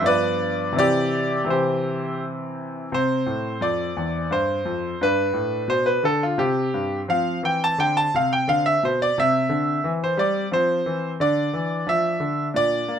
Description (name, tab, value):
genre	classical, baroque-style suite movement for grand piano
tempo	87 BPM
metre	3/4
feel	rubato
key	C major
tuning	A4 = 441 Hz
part	bright concert grand piano	solo	0.0-13.0 s	E2 to A5	-20 LUFS	equal	none
room	light reverb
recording	close, detailed microphones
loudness	-20 LUFS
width	side -8 dB against mid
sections	0.0-2.9 A section; 2.9-13.0 B section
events	none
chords	0.1 G7; 0.8 C; 5.0 G; 6.4 C5; 7.1 F5; 9.1 C; 10.5 F5; 11.2 Dm